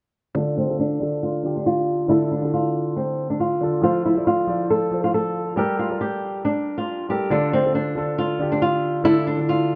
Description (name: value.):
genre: hip hop.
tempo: 138 BPM.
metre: 4/4.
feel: half-time.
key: D minor.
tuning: A4 = 441 Hz.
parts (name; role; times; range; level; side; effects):
dark concert grand piano; accompaniment; 0.3-9.8 s; D3 to D5; -27 LUFS; equal; low-pass filter.
nylon-string guitar; melody; 0.4-9.8 s; C4 to A4; -23 LUFS; equal; low-pass filter.
room: moderate plate reverb, RT60 2.5 s.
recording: dark, warm production.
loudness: -22 LUFS.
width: mono.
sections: 0.4-9.8 A section.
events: filter sweep 0.4-9.8.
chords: 0.4 Dm; 3.8 F; 5.6 Gmadd9; 7.3 Dm.